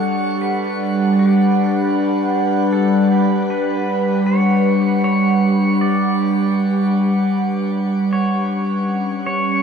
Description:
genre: ambient.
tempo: 78 BPM.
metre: 3/4.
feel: straight.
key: G lydian.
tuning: A4 = 440 Hz.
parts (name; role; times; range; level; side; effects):
evolving wavetable pad; sustained chords; 0.0-9.6 s; G3 to F#5; -15 LUFS; equal; chorus, built-in reverb, phaser.
pedal steel guitar; melody; 0.4-9.6 s; G4 to D5; -25 LUFS; equal; diffuse ambient delay.
room: wet shimmer reverb, RT60 9.2 s.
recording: none.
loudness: -15 LUFS.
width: side -6 dB against mid.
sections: 0.0-9.6 A section.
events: fade-in on pedal steel guitar 0.0-9.6; filter sweep on ambient pad 0.0-9.6.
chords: 0.0 Gmaj7; 8.1 F#5/G.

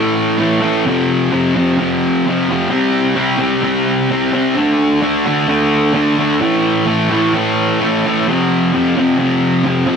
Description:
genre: rock.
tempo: 130 BPM.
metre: 4/4.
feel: straight.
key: unclear.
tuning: A4 = 441 Hz.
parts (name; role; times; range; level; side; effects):
fuzz guitar; solo; 0.0-10.0 s; F2 to D4; -12 LUFS; equal; distortion, tape echo.
room: light reverb, digital ambience.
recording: none.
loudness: -12 LUFS.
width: side -6 dB against mid.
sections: 0.0-10.0 A section.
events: none.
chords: 0.0 A5; 0.8 F5; 2.7 C5; 4.6 D5; 6.4 A5; 8.3 F5.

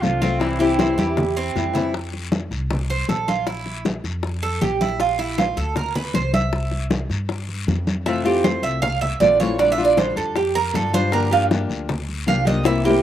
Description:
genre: latin, Cuban son and guajira.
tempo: 157 BPM.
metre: 4/4.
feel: straight.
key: F major.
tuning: A4 = 440 Hz.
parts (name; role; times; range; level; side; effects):
warm trumpet; melody; 0.0-1.6 s; E4 to F4; -29 LUFS; equal; slapback echo.
nylon-string guitar; accompaniment; 0.0-1.9, 8.1-13.0 s; C3 to G4; -22 LUFS; left 4 dB; none.
Cuban tres; arpeggios; 0.0-13.0 s; C4 to F5; -21 LUFS; right 5 dB; slapback echo.
upright bass; bass; 0.0-13.0 s; Bb1 to G2; -26 LUFS; equal; none.
bongos; percussion; 0.0-13.0 s; none; -27 LUFS; left 7 dB; none.
congas; percussion; 0.0-13.0 s; none; -25 LUFS; equal; none.
guiro; percussion; 0.0-13.0 s; none; -36 LUFS; left 7 dB; slapback echo.
room: little or no reverb.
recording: recorded outdoors, with no room sound.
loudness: -18 LUFS.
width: side -11 dB against mid.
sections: 0.0-1.9 A section; 1.9-13.0 B section.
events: drum fill 1.0-1.9, 12.7-13.0; Cuban tres solo 1.9-13.0.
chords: 0.4 C; 1.9 F5; 3.5 Bb5; 5.0 Cmaj13; 6.5 C; 8.1 Fmaj7; 9.6 Bb6; 11.1 Gm7.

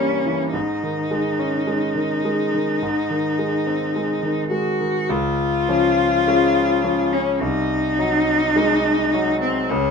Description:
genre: classical, romantic duo for cello and grand piano.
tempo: 53 BPM.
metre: 4/4.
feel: rubato.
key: unclear.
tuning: A4 = 439 Hz.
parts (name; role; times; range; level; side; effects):
clear cello; melody; 0.0-9.9 s; C4 to Gb4; -20 LUFS; left 2 dB; none.
bright concert grand piano; accompaniment; 0.0-9.9 s; C2 to Eb4; -22 LUFS; right 1 dB; none.
room: light reverb.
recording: minimal, uncompressed stereo recording.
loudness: -18 LUFS.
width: side -5 dB against mid.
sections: 0.0-5.1 A section; 5.1-9.9 B section.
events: none.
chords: 0.0 Gdim7; 0.5 Absus4; 2.8 Ab; 5.1 Db; 7.4 Ab7/C.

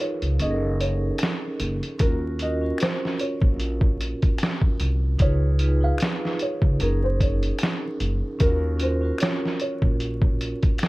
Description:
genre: lo-fi hip hop.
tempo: 75 BPM.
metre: 4/4.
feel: swing 55% on 16ths.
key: Eb minor.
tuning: A4 = 440 Hz.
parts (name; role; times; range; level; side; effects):
felt-muted upright piano; melody; 0.0-10.9 s; Bb4 to F5; -30 LUFS; equal; low-pass filter, tape echo.
vibraphone with medium hard mallets; accompaniment; 0.0-10.9 s; Db4 to Cb5; -29 LUFS; right 2 dB; cassette tape, low-pass filter.
lo-fi sampler-style drum kit; drums; 0.0-10.9 s; hi-hat, kick drum, snare drum; -23 LUFS; equal; none.
upright bass; bass; 0.2-10.5 s; Gb1 to Eb2; -24 LUFS; equal; none.
finger snap; percussion; 1.2-10.9 s; none; -34 LUFS; left 4 dB; none.
room: small room reverb.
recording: vinyl crackle.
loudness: -21 LUFS.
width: side -20 dB against mid.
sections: 0.0-10.9 A section.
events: break 0.0-2.0.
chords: 0.4 Gb6; 2.0 Ebm7; 5.2 Db7; 6.8 Gb6; 8.4 Ebm7.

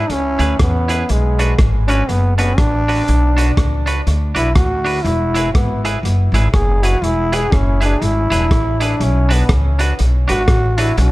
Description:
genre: ska.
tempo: 121 BPM.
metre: 4/4.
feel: swing 60% on 8ths.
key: E mixolydian.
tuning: A4 = 440 Hz.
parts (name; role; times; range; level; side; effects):
growling trombone; melody; 0.0-11.1 s; G#3 to G#4; -19 LUFS; equal; dub echo.
clean electric guitar; accompaniment; 0.0-10.9 s; D4 to B4; -24 LUFS; right 2 dB; dub echo.
upright bass; bass; 0.0-11.1 s; E1 to E2; -16 LUFS; equal; none.
crunchy breakbeat drum kit; drums; 0.1-11.1 s; hi-hat, kick drum, rim click; -19 LUFS; equal; dub echo.
room: studio ambience.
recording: dark, warm production.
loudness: -13 LUFS.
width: side -18 dB against mid.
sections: 0.0-11.1 A section.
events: trombone solo 0.0-11.1.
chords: 0.0 E; 1.1 Bm; 5.1 E; 9.0 Bm.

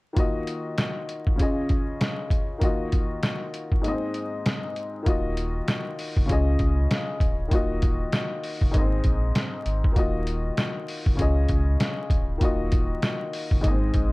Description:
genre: hip hop, boom-bap hip-hop.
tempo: 98 BPM.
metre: 4/4.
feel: swing 63% on 16ths.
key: Eb dorian.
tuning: A4 = 440 Hz.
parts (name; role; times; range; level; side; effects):
dark upright piano; accompaniment; 0.1-14.1 s; Ab2 to Eb5; -28 LUFS; left 2 dB; cassette tape, high-pass filter, low-pass filter.
trip hop sampler-style drum kit; drums; 0.2-14.1 s; hi-hat, kick drum, snare drum; -24 LUFS; equal; none.
sub bass with octave; bass; 5.1-14.1 s; D1 to Db2; -25 LUFS; equal; none.
room: little or no reverb.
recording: vinyl crackle.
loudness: -22 LUFS.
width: side -23 dB against mid.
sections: 0.2-5.1 A section; 5.1-14.1 B section.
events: break 3.8-5.1.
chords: 0.2 Ebmadd9; 1.4 Dbadd9; 2.6 Ebmadd9; 3.8 Ab; 5.1 Ebmadd9; 6.3 Dbadd9; 7.5 Ebmadd9; 8.7 Ab; 10.0 Ebmadd9; 11.2 Dbadd9; 12.4 Ebmadd9.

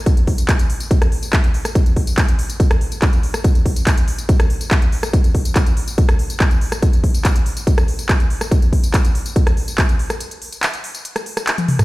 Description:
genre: techno.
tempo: 142 BPM.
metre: 4/4.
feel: straight.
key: none.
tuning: none.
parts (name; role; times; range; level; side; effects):
electronic kick drum; drums; 0.1-9.9 s; none; -14 LUFS; equal; studio ambience.
techno drum kit; drums; 0.1-11.8 s; handclaps, hi-hat, rim click, tambourine, toms; -22 LUFS; equal; sidechain pumping on hats, studio ambience, sidechain pumping on perc, sidechain pumping on cymbals, sidechain pumping on toms.
room: digital ambience.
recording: played on a big sound system in a bare room, stone room reverb.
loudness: -14 LUFS.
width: side -19 dB against mid.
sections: 0.0-11.8 A section.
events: break 10.2-11.8; drum fill 11.6.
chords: none.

